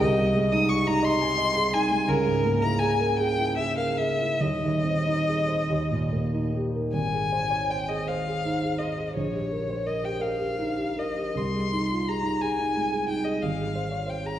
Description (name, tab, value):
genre	classical, romantic duo for violin and grand piano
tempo	46-60 BPM (dotted quarters)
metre	6/8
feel	rubato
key	Ab major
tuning	A4 = 440 Hz
part	rich violin	melody	0.0-14.4 s	Bb4 to Eb6	-27 LUFS	left 2 dB	none
part	dark baby grand piano	accompaniment	0.0-14.4 s	Eb1 to Ab5	-25 LUFS	right 1 dB	none
room	wet recital hall reverb, RT60 1.7 s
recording	heard from further back in the room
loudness	-23 LUFS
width	side -11 dB against mid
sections	0.0-6.9 A section; 6.9-14.4 B section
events	none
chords	0.0 Ab/C; 2.1 Bbm7b5/Db; 4.4 Ab/Eb; 5.7 Eb; 6.9 Ab; 9.1 Eb7/Bb; 11.4 Ab/C; 13.4 Ab